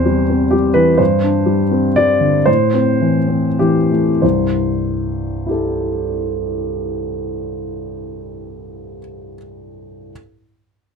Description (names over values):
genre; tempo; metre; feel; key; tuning
neoclassical minimalist piano; 91-129 BPM; 3/4; rubato; C major; A4 = 440 Hz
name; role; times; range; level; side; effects
dark grand piano; solo; 0.0-10.1 s; C2 to D5; -15 LUFS; left 1 dB; none
room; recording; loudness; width
light reverb; close, detailed microphones; -14 LUFS; side -6 dB against mid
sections
0.0-4.2 A section; 4.2-7.9 B section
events
slowing down 0.3-4.2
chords
0.0 C/E; 1.0 Gsus4; 2.5 Am; 4.2 C6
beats
0.06 0.53 | 1.00 1.47 1.97 | 2.47 3.01 3.59 | 4.23 4.84 5.45 | 6.05 6.66 7.26